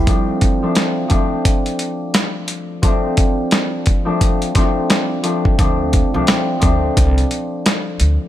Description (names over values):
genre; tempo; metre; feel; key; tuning
hip hop, boom-bap hip-hop; 87 BPM; 4/4; swing 60% on 16ths; D minor; A4 = 440 Hz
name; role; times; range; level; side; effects
concert harp; accompaniment; 0.0-8.3 s; F3 to D4; -19 LUFS; left 1 dB; high-pass filter, low-pass filter
dusty soul sampler-style drum kit; drums; 0.1-8.2 s; hi-hat, kick drum, snare drum; -16 LUFS; equal; overdrive
upright bass; bass; 5.6-8.2 s; C2 to D2; -17 LUFS; equal; none
room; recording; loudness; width
small room ambience; none; -14 LUFS; side -12 dB against mid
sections
0.1-8.3 A section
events
none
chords
0.1 Dm7